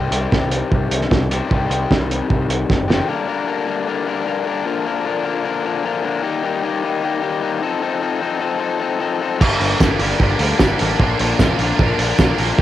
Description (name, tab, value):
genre	indie rock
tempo	152 BPM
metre	4/4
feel	straight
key	C dorian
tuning	A4 = 439 Hz
part	crunchy overdriven guitar	riff	0.0-12.6 s	G2 to Bb4	-20 LUFS	left 6 dB	cassette tape
part	growling picked electric bass	bass	0.0-3.0, 9.4-12.6 s	F#1 to Eb2	-22 LUFS	right 1 dB	overdrive
part	cloth-damped thuddy drum kit	drums	0.1-3.0, 9.4-12.6 s	crash cymbal, hi-hat, kick drum, snare drum	-17 LUFS	right 1 dB	cassette tape
part	scooped high-gain guitar	riff	9.4-12.6 s	G2 to G4	-22 LUFS	right 9 dB	distortion, ensemble chorus, cassette tape
part	tambourine	percussion	9.8-12.3 s	none	-38 LUFS	left 8 dB	none
room	light reverb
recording	home recording on cassette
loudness	-16 LUFS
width	side -12 dB against mid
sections	0.0-3.1 A section; 3.1-12.6 B section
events	drum fill 2.7-3.1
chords	0.0 Cm; 3.1 Gm; 4.7 Bb; 6.2 Eb; 7.6 F7; 9.4 Gm; 11.0 Bb